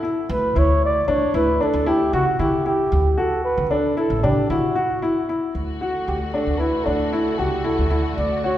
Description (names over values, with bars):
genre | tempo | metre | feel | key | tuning
contemporary instrumental, chamber music in an uneven meter | 114 BPM | 5/4 | straight | D major | A4 = 440 Hz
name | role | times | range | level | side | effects
breathy flugelhorn | melody | 0.0-8.6 s | F#4 to D5 | -23 LUFS | right 1 dB | none
warm grand piano | arpeggios | 0.0-8.6 s | D4 to F#4 | -22 LUFS | left 1 dB | none
upright bass | bass | 0.3-8.4 s | A1 to D3 | -24 LUFS | equal | none
warm symphonic string section | sustained chords | 5.5-8.6 s | D3 to F#4 | -30 LUFS | left 2 dB | none
room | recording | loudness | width
wet concert hall reverb, RT60 2.1 s | recorded in a church or concert hall | -18 LUFS | side -12 dB against mid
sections
0.0-5.5 A section; 5.5-8.6 B section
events
none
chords
0.3 Dsus2; 2.9 D